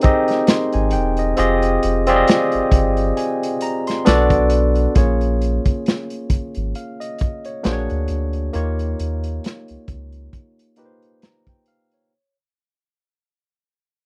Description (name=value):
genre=R&B, neo-soul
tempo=67 BPM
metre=4/4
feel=swing 57% on 16ths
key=Bb dorian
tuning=A4 = 440 Hz
part: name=barky tine electric piano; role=accompaniment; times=0.0-12.4 s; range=Bb3 to C6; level=-21 LUFS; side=equal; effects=overdrive
part: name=crunchy breakbeat drum kit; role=drums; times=0.0-12.1 s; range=hi-hat, kick drum, snare drum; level=-20 LUFS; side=equal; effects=none
part: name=round analog bass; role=bass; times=0.8-10.3 s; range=E1 to Eb2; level=-23 LUFS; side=equal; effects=none
room=little or no reverb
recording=dry, close 1970s-style studio recording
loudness=-19 LUFS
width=mono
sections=0.0-5.0 A section; 5.0-12.1 B section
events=fade-out 5.0-12.1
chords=0.0 Abmaj7; 1.4 Fm9; 4.1 Bm7; 5.0 Bbm7; 7.6 Bb7alt; 8.5 Eb9